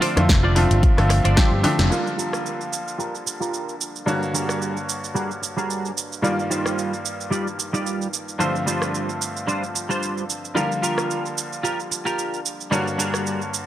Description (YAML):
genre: nu-disco, nu disco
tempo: 111 BPM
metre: 4/4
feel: swing 55% on 16ths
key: G minor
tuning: A4 = 441 Hz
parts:
  - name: bright concert grand piano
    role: accompaniment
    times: 0.0-13.7 s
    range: G2 to D5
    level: -25 LUFS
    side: left 1 dB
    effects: sidechain pumping, dub echo
  - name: semi-hollow electric guitar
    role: riff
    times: 0.0-13.4 s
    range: G3 to D5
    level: -26 LUFS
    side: right 1 dB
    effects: analog chorus, low-pass filter, dub echo
  - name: house drum kit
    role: drums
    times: 0.0-13.7 s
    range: hi-hat, rim click, shaker, snare drum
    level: -26 LUFS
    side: right 2 dB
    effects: studio reverb
  - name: fingered electric bass with an envelope filter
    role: bass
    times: 0.2-1.9 s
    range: F1 to G2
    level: -19 LUFS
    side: equal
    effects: none
  - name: electronic kick drum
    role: drums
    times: 0.3-1.5 s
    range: none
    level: -17 LUFS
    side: equal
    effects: studio reverb
room: light reverb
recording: none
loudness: -20 LUFS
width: side -12 dB against mid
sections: 0.0-1.9 A section; 1.9-13.7 B section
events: drum fill 1.4-1.9; band accent 1.8; filter sweep on clean electric guitar 1.9-13.7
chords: 0.0 Dm7; 1.9 Gm7; 4.1 Bb7alt/G; 6.2 Ebmaj9/G; 8.4 Dm7/G; 10.6 Gm7; 12.7 Bb7alt/G